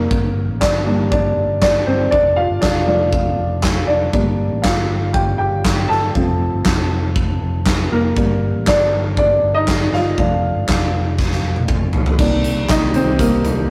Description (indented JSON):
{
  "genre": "piano-driven pop",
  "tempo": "119 BPM",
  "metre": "4/4",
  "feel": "straight",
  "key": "G minor",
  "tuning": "A4 = 440 Hz",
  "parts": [
    { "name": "warm baby grand piano", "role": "accompaniment", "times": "0.0-13.7 s", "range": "Eb3 to A5", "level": "-20 LUFS", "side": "equal", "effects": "none" },
    { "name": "fingered electric bass", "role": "bass", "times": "0.0-13.7 s", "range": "F1 to C2", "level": "-24 LUFS", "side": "equal", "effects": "none" },
    { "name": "huge arena drum kit", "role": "drums", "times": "0.1-13.6 s", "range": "crash cymbal, handclaps, hi-hat, kick drum, snare drum, toms", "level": "-22 LUFS", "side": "equal", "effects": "none" },
    { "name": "airy breathy pad", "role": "sustained chords", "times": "12.2-13.7 s", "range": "Eb3 to G4", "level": "-29 LUFS", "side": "equal", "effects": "chorus" }
  ],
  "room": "moderate stone room reverb, RT60 1.0 s",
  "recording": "rough rehearsal-room recording, tube saturation",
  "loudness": "-17 LUFS",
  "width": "mono",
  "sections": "0.0-12.2 A section; 12.2-13.7 B section",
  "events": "grand piano solo 0.0-12.2, 12.2-13.7; drum fill 11.2-12.2",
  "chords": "0.1 Gm; 2.1 Dm/F; 4.1 Gm; 6.2 F; 8.2 Gm; 10.2 Dm/F; 12.2 Cm7"
}